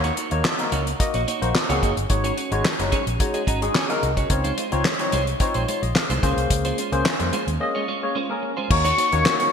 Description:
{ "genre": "early-eighties boogie funk", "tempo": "109 BPM", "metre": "4/4", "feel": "straight", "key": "Eb dorian", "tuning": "A4 = 440 Hz", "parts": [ { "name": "barky tine electric piano", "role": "accompaniment", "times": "0.0-9.5 s", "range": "Ab3 to Bb5", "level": "-25 LUFS", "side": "left 2 dB", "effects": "overdrive, lush chorus" }, { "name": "clean electric guitar", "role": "riff", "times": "0.0-9.4 s", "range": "Ab3 to Eb5", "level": "-29 LUFS", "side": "right 5 dB", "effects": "lush chorus" }, { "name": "vintage muted fingered electric bass", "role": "bass", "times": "0.0-9.2 s", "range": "Gb1 to F2", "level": "-25 LUFS", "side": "equal", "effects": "none" }, { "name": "damped 70s drum kit", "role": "drums", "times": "0.0-9.5 s", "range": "crash cymbal, handclaps, hi-hat, kick drum, snare drum", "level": "-23 LUFS", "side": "equal", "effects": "gated reverb" }, { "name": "expressive synth lead", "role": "melody", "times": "8.7-9.5 s", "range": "Db6", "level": "-20 LUFS", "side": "left 2 dB", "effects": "chorus" } ], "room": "moderate lush hall reverb, RT60 1.6 s, small room ambience", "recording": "bright 1980s-style digital production", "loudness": "-20 LUFS", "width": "side -7 dB against mid", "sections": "0.0-8.7 A section", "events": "tine electric piano fill 3.2-4.3; break 7.6-8.7", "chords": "0.0 Ebm7; 2.1 Ab7sus4; 4.3 Dbmaj9; 6.2 Bbm9; 8.7 Ebm7", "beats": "0.45 1.00 1.55 | 2.10 2.65 3.20 3.75 | 4.30 4.85 5.40 5.95 | 6.50 7.05 7.60 8.15 | 8.70 9.25" }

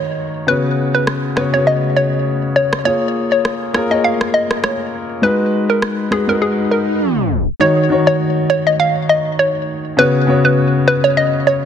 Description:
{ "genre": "dancehall", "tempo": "101 BPM", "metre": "4/4", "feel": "swing 56% on 16ths", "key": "Eb minor", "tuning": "A4 = 440 Hz", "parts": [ { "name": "hollow square pluck", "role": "melody", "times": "0.0-11.6 s", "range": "Ab4 to F5", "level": "-16 LUFS", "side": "equal", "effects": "chorus, ping-pong delay" }, { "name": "warm concert grand piano", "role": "accompaniment", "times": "0.0-11.7 s", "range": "Db3 to Db5", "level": "-16 LUFS", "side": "left 2 dB", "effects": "none" }, { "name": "electronic rim click", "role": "drums", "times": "1.1-6.3 s", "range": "none", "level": "-22 LUFS", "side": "right 1 dB", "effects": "soft clipping on snare" }, { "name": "swell", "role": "sound effects", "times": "6.4-7.6 s", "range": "none", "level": "-25 LUFS", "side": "right 2 dB", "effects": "none" } ], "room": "light reverb", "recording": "dense, heavily limited modern master, tape stop", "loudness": "-13 LUFS", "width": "side -8 dB against mid", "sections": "0.0-7.6 A section; 7.6-11.7 B section", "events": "swell 6.4-7.6; silent gap 6.4-7.6; tape stop 7.0-7.6", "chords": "0.5 Db7sus4; 2.9 Bbm7; 5.2 Abm7; 7.6 Ebm7; 10.0 Db7sus4", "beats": "| 0.48 1.07 1.67 2.26 | 2.85 3.45 4.04 4.64 | 5.23 5.83 6.42 7.01 | 7.61 8.20 8.80 9.39 | 9.98 10.58 11.17" }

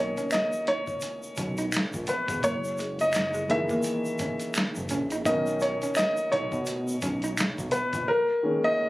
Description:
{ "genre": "R&B, neo-soul", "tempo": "85 BPM", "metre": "4/4", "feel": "swing 60% on 16ths", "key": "B major", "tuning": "A4 = 444 Hz", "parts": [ { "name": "warm grand piano", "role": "accompaniment", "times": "0.0-8.9 s", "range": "D#3 to E5", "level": "-26 LUFS", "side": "equal", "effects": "none" }, { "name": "fat analog bass", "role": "bass", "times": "0.0-8.1 s", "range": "E1 to B2", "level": "-34 LUFS", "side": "equal", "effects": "none" }, { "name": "electric guitar through a small old amp", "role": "second line", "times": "0.2-7.9 s", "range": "G#3 to D#4", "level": "-34 LUFS", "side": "right 1 dB", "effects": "wide subtle chorus" }, { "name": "dusty soul sampler-style drum kit", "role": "drums", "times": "0.2-8.1 s", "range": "hi-hat, kick drum, snare drum", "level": "-32 LUFS", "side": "equal", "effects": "overdrive" }, { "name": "tube shaker and finger snaps", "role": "percussion", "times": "0.2-8.1 s", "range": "none", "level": "-36 LUFS", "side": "equal", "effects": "none" } ], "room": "light reverb, small room ambience", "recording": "recorded on a phone in the room, club ambience", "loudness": "-25 LUFS", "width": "side -18 dB against mid", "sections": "0.0-8.9 A section", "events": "grand piano solo 0.0-8.9; drums muted 8.1-8.9", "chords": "0.0 Bmaj7; 2.4 F#13; 5.3 Bmaj7; 8.1 D#sus4", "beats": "0.32 1.02 1.73 | 2.44 3.14 3.85 4.55 | 5.26 5.96 6.67 7.38 | 8.08 8.79" }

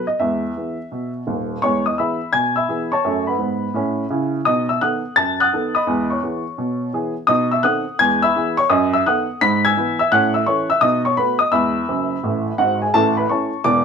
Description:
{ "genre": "jazz, stride piano", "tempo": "170 BPM", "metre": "4/4", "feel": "swing 66% on 8ths", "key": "E major", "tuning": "A4 = 440 Hz", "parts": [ { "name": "warm upright piano", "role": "solo", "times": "0.0-13.8 s", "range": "D#1 to B6", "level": "-16 LUFS", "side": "equal", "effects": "none" } ], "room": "moderate studio reverb, RT60 0.7 s", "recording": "none", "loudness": "-16 LUFS", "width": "side -6 dB against mid", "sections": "0.0-1.6 A section; 1.6-12.9 A section", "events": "upright piano fill 11.9-12.9", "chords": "0.2 E; 3.0 B5/F#; 4.5 B7; 5.9 E; 7.3 B7b9; 8.0 E; 8.7 B7/F#; 9.4 E/G#; 10.1 A; 10.8 B7; 11.5 E; 12.9 A", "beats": "| 0.20 0.56 0.91 1.26 | 1.62 1.97 2.33 2.68 | 3.04 3.39 3.75 4.10 | 4.45 4.81 5.16 5.52 | 5.87 6.22 6.58 6.93 | 7.29 7.64 7.99 8.35 | 8.70 9.05 9.41 9.76 | 10.11 10.46 10.82 11.17 | 11.52 11.88 12.23 12.58 | 12.93 13.29 13.64" }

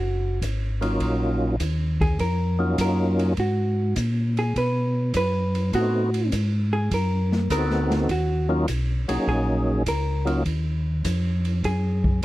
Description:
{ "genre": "soul jazz organ trio", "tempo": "102 BPM", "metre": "4/4", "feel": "swing 68% on 8ths", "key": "Eb minor", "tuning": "A4 = 441 Hz", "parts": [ { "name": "vintage hollow-body jazz guitar", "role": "accompaniment", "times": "0.0-12.2 s", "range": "Gb4 to Cb5", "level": "-27 LUFS", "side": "equal", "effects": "none" }, { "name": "mellow tonewheel organ", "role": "bass", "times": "0.0-12.2 s", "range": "Gb1 to Cb3", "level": "-24 LUFS", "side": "equal", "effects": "chorus vibrato, slow rotary speaker" }, { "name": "open jazz drum kit", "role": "drums", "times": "0.4-12.2 s", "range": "hi-hat, kick drum, ride cymbal, snare drum", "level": "-30 LUFS", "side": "equal", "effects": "none" }, { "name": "percussive tonewheel organ", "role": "melody", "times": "0.8-10.4 s", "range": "Gb3 to A4", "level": "-23 LUFS", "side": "equal", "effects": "slow rotary speaker, overdrive, chorus vibrato" } ], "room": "little or no reverb", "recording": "dry, close 1970s-style studio recording", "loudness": "-21 LUFS", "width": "side -16 dB against mid", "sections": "0.0-12.2 A section", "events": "hollow-body jazz guitar solo 0.0-12.2", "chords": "0.0 Ebm7; 3.4 Abm7; 5.7 Adim7; 8.1 Ebm7", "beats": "0.42 | 1.01 1.60 2.19 2.78 | 3.37 3.96 4.55 5.15 | 5.74 6.33 6.92 7.51 | 8.10 8.69 9.28 9.87 | 10.46 11.05 11.64 12.23" }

